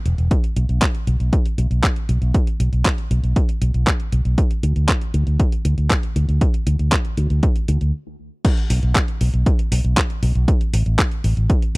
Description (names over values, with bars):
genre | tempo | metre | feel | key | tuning
italo disco | 118 BPM | 4/4 | straight | unclear | A4 = 440 Hz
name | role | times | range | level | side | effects
fingered electric bass with an envelope filter | bass | 0.1-11.8 s | E1 to D2 | -19 LUFS | equal | none
clean 12-bit digital drum machine | drums | 0.1-11.8 s | crash cymbal, handclaps, hi-hat | -24 LUFS | equal | none
electronic kick drum | drums | 0.3-11.6 s | none | -18 LUFS | equal | overdrive
room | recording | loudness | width
little or no reverb | dry, close 1970s-style studio recording | -16 LUFS | side -26 dB against mid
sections
0.0-8.4 A section; 8.4-11.8 B section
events
stop 7.9-8.4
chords
none